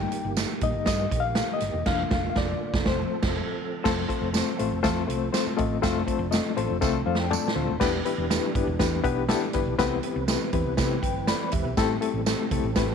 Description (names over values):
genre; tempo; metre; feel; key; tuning
uptempo 1960s-style soul; 121 BPM; 4/4; straight; unclear; A4 = 440 Hz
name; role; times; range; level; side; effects
reed electric piano; accompaniment; 0.0-12.9 s; F3 to B5; -27 LUFS; left 10 dB; fast tremolo
percussive tonewheel organ; sustained chords; 0.0-12.9 s; D3 to B4; -35 LUFS; right 14 dB; slow rotary speaker, chorus vibrato
hollow-body short-scale fingered electric bass; bass; 0.0-12.9 s; E1 to C3; -31 LUFS; right 2 dB; none
swinging big-band drum kit; drums; 0.1-12.9 s; crash cymbal, hi-hat, kick drum, snare drum, toms; -28 LUFS; right 3 dB; none
tambourine; percussion; 0.4-12.9 s; none; -36 LUFS; right 18 dB; none
room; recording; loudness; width
studio ambience; 1960s-style stereo with parts hard left and right; -23 LUFS; side -6 dB against mid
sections
0.0-3.9 A section; 3.9-7.8 B section; 7.8-12.9 C section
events
reed electric piano solo 0.0-3.9; band accent 1.9-3.9; drum fill 6.8-7.8; reed electric piano fill 6.8-7.8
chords
0.0 Eb/G; 1.9 Bb/F; 2.9 F; 7.8 Em7; 9.8 Cmaj7; 11.8 Am7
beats
0.37 0.87 1.37 | 1.87 2.36 2.86 3.36 | 3.85 4.35 4.85 5.34 | 5.84 6.33 6.83 7.32 | 7.82 8.31 8.81 9.30 | 9.79 10.29 10.78 11.28 | 11.77 12.27 12.76